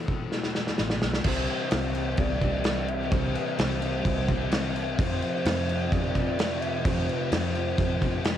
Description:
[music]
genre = rock, shoegaze and dream pop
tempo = 129 BPM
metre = 4/4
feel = straight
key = C major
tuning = A4 = 441 Hz
[part]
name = reedy FM lead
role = melody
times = 0.0-8.4 s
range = A4 to E5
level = -35 LUFS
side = right 2 dB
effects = chorus, cassette tape, analog delay
[part]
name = raw garage guitar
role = riff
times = 0.0-8.4 s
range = C3 to F4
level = -37 LUFS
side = right 10 dB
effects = overdrive, reverse reverb, cassette tape
[part]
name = thick fuzz guitar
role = riff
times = 0.0-8.4 s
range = E2 to C4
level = -33 LUFS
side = left 8 dB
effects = distortion, ensemble chorus, cassette tape
[part]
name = vintage muted fingered electric bass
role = bass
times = 0.0-8.4 s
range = A1 to E3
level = -32 LUFS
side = right 1 dB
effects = none
[part]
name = loose indie drum kit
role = drums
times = 0.1-8.4 s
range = crash cymbal, kick drum, snare drum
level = -27 LUFS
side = equal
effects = cassette tape
[part]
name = overdriven semi-hollow guitar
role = riff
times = 1.2-8.4 s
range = F2 to C4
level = -38 LUFS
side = right 1 dB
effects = none
[sound]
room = little or no reverb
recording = home recording on cassette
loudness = -24 LUFS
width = side -10 dB against mid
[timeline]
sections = 0.0-1.3 A section; 1.3-8.4 B section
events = drum fill 0.3-1.3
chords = 0.0 Esus4; 1.3 C; 5.0 F

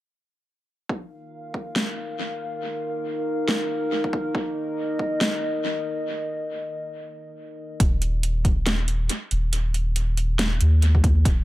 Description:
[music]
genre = deep dubstep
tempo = 139 BPM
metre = 4/4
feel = swing 58% on 16ths, half-time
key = unclear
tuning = A4 = 439 Hz
[part]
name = dark analog pad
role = sustained chords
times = 0.9-7.8 s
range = Eb4 to F5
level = -28 LUFS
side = equal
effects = lush chorus
[part]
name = electronic kick drum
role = drums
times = 0.9-5.1, 7.8-11.4 s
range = none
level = -22 LUFS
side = equal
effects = high-pass filter on kick, small room ambience, high-pass filter on room
[part]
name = dubstep drum kit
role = drums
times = 1.8-11.4 s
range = hi-hat, snare drum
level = -27 LUFS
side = equal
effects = small room ambience, dub echo
[part]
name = soft dub sub bass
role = bass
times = 7.8-11.4 s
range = Eb1 to Eb2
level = -20 LUFS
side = equal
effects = none
[sound]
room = light reverb, digital ambience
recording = echo-heavy mix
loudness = -22 LUFS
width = side -16 dB against mid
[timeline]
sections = 0.9-7.8 A section; 7.8-11.4 B section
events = break 6.1-7.8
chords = 0.9 Eb5

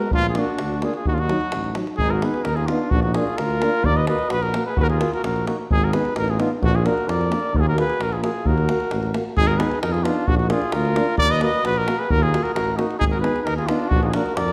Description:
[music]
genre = balkan folk, Balkan brass band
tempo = 131 BPM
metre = 2/4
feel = straight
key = Eb harmonic minor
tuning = A4 = 437 Hz
[part]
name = mellow trumpet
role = melody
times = 0.0-14.5 s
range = F4 to Eb5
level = -26 LUFS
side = equal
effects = none
[part]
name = warm flugelhorn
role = second line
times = 0.0-14.5 s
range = D4 to Cb5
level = -31 LUFS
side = equal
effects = none
[part]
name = davul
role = percussion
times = 0.0-14.5 s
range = none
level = -28 LUFS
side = equal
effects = none
[part]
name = mellow tuba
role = bass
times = 0.1-14.5 s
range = Ab1 to F2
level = -26 LUFS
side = equal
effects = none
[part]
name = dark trombone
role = accompaniment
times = 0.4-14.2 s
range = Gb3 to Cb4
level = -31 LUFS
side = equal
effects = none
[part]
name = mellow euphonium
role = accompaniment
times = 0.4-14.2 s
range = D4 to Gb4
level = -33 LUFS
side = equal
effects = none
[sound]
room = wet recital hall reverb, RT60 1.5 s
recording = none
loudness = -21 LUFS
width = mono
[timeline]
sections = 0.0-2.0 A section; 2.0-9.4 B section; 9.4-14.5 B section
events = none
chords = 0.1 Bb; 1.1 Ebm; 2.0 Abm; 2.9 Bb; 3.9 Ebm; 5.7 Abm; 6.6 Bb; 7.5 Ebm; 9.4 Abm; 10.3 Bb; 11.2 Ebm; 13.0 Abm; 13.9 Bb

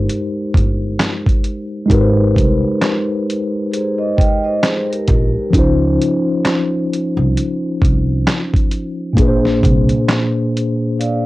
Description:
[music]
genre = lo-fi hip hop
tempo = 66 BPM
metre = 4/4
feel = swing 59% on 16ths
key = Ab major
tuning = A4 = 439 Hz
[part]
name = mellow tine electric piano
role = accompaniment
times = 0.0-11.3 s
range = Bb2 to C5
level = -17 LUFS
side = left 1 dB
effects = medium stereo tremolo, low-pass filter, plate reverb
[part]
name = upright bass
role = bass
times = 0.0-9.9 s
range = G1 to Db2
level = -18 LUFS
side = equal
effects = tube saturation
[part]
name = dusty soul sampler-style drum kit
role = drums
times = 0.1-11.2 s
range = handclaps, hi-hat, kick drum, snare drum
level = -16 LUFS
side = equal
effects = none
[part]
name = vibraphone with soft mallets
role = second line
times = 3.7-5.5, 11.0-11.2 s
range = G4 to G5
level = -20 LUFS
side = right 2 dB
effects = low-pass filter, analog delay, plate reverb
[sound]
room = light reverb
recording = home recording on cassette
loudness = -13 LUFS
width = side -18 dB against mid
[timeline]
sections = 0.0-11.3 A section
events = none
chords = 0.0 Abmaj9; 5.5 Dbmaj7; 9.2 Bb9

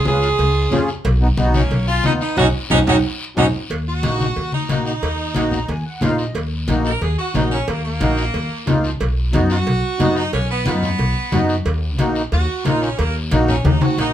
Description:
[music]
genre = latin, cumbia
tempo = 181 BPM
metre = 4/4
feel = straight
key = Eb minor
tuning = A4 = 440 Hz
[part]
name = bright saxophone section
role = melody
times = 0.0-14.1 s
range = Bb3 to Bb4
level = -22 LUFS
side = right 2 dB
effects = none
[part]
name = accordion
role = accompaniment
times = 0.0-14.1 s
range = Bb3 to Bb5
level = -21 LUFS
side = equal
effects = light tremolo tuning
[part]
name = upright bass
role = bass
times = 0.1-14.1 s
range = Bb1 to F#2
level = -20 LUFS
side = equal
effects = none
[part]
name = congas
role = percussion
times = 0.1-13.9 s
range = none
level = -23 LUFS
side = left 3 dB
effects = none
[part]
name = guiro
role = percussion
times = 0.1-14.1 s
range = none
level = -33 LUFS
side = left 4 dB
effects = none
[part]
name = cowbell and timbales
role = percussion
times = 0.4-14.1 s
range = none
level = -26 LUFS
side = right 4 dB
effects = none
[sound]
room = moderate studio reverb, RT60 0.7 s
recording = minimal, uncompressed stereo recording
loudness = -16 LUFS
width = side -11 dB against mid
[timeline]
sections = 0.0-3.7 A section; 3.7-14.1 B section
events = band accent 2.4-3.7; drum fill 2.9-3.7, 13.7-14.1; saxophone section solo 3.7-14.1; accordion fill 5.4-6.3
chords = 0.0 Db; 1.1 Badd9; 3.7 Ebm; 9.0 B; 11.7 Ebm

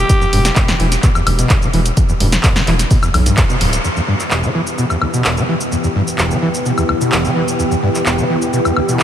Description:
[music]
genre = acid house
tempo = 128 BPM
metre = 4/4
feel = straight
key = E minor pentatonic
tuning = A4 = 441 Hz
[part]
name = raspy alto saxophone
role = melody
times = 0.0-0.5 s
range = G4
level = -24 LUFS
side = equal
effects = analog delay
[part]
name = round analog bass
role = bass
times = 0.0-3.8 s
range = D1 to B1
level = -16 LUFS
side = equal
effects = sidechain pumping
[part]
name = overdriven acid bass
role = riff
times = 0.1-9.0 s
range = E1 to E3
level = -18 LUFS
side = equal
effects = distortion, lush chorus, vintage 12-bit sampler grit, sidechain pumping, ping-pong delay
[part]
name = electronic kick drum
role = drums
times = 0.1-3.5 s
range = none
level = -14 LUFS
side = equal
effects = none
[part]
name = punchy analog drum machine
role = drums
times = 0.1-9.0 s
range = cabasa, handclaps, hi-hat, snare drum, woodblock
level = -18 LUFS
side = equal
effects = none
[part]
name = lush unison pad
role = sustained chords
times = 3.8-9.0 s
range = E3 to G4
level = -19 LUFS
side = equal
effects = chorus, sidechain pumping
[sound]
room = moderate huge ambient reverb, RT60 8.5 s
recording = dreamy mix soaked in reverb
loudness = -12 LUFS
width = side -10 dB against mid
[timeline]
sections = 0.0-3.8 A section; 3.8-9.0 B section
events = drop 0.0-3.8; band accent 3.4; filter sweep on analog synth pad 3.8-9.0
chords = 0.0 N.C.; 3.8 Em

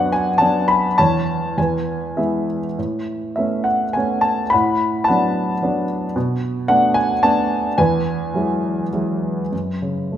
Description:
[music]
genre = classical, lyrical solo piano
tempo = 99-112 BPM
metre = 3/4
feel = rubato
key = unclear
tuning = A4 = 441 Hz
[part]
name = dark grand piano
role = solo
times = 0.0-10.2 s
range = E2 to B5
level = -17 LUFS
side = equal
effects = none
[sound]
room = moderate recital hall reverb, RT60 1.5 s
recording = recorded in a church or concert hall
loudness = -17 LUFS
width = side -10 dB against mid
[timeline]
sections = 0.0-9.5 A section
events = none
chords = 0.0 Bm/F#; 1.0 A/E; 1.6 E; 2.8 Aadd9; 4.5 D6/A; 6.2 Bm7; 7.8 Eadd9; 9.5 F#5

